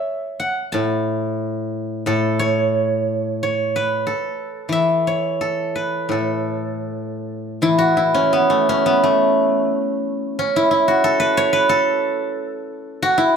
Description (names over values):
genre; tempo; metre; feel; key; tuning
chinese traditional, Chinese solo plucked strings; 75-95 BPM; 4/4; rubato; A gong mode; A4 = 440 Hz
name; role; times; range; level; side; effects
steel-string zither; solo; 0.0-13.4 s; A2 to A5; -17 LUFS; equal; none
room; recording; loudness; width
wet studio reverb, RT60 0.8 s; heard from further back in the room; -17 LUFS; side -6 dB against mid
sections
0.0-7.6 A section; 7.6-13.4 B section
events
none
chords
none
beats
0.10 0.76 1.42 | 2.08 2.74 3.40 4.05 | 4.72 5.41 6.12 6.89 | 7.63 8.33 9.03 9.70 | 10.36 11.03 11.70 12.36 | 13.00